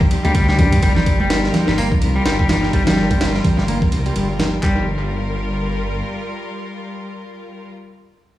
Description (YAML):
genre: breakbeat, breaks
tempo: 126 BPM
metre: 4/4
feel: swing 58% on 16ths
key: G minor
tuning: A4 = 439 Hz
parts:
  - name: clear studio string section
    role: sustained chords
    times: 0.0-7.7 s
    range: G3 to Bb4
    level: -25 LUFS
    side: left 1 dB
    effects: sidechain pumping
  - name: dark detuned saw bass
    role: bass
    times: 0.0-6.0 s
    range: G1 to G2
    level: -21 LUFS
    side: equal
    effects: tube saturation
  - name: breakbeat sampler-style drum kit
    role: drums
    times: 0.0-4.8 s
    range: handclaps, hi-hat, kick drum, ride cymbal, snare drum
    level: -18 LUFS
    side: equal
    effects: analog delay
  - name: semi-hollow electric guitar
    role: riff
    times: 0.2-4.9 s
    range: G3 to Bb3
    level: -21 LUFS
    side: left 1 dB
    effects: tube saturation, vintage 12-bit sampler grit, low-pass filter, analog delay
  - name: bongos and congas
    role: percussion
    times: 0.2-4.5 s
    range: none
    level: -23 LUFS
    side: right 2 dB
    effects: analog delay
room: light reverb, digital ambience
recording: echo-heavy mix, studio reverb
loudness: -15 LUFS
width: side -14 dB against mid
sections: 0.8-4.6 A section; 4.6-8.4 B section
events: filter sweep on clean electric guitar 0.8-4.6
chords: 0.0 G7(no3); 0.8 Gm7